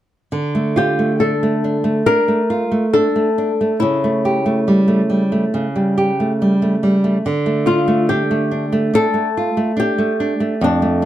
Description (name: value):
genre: romantic duo for nylon-string guitar and classical guitar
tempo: 70 BPM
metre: 4/4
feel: rubato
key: D minor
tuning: A4 = 440 Hz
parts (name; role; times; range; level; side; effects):
- nylon-string guitar; accompaniment; 0.3-11.1 s; F2 to G4; -16 LUFS; right 1 dB; none
- flamenco guitar; melody; 0.8-11.1 s; D4 to Bb4; -18 LUFS; left 3 dB; plate reverb
room: light reverb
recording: dark, warm production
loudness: -14 LUFS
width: side -12 dB against mid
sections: 0.3-11.1 A section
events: none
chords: 0.3 Dm; 3.8 A7/C#; 7.2 Dm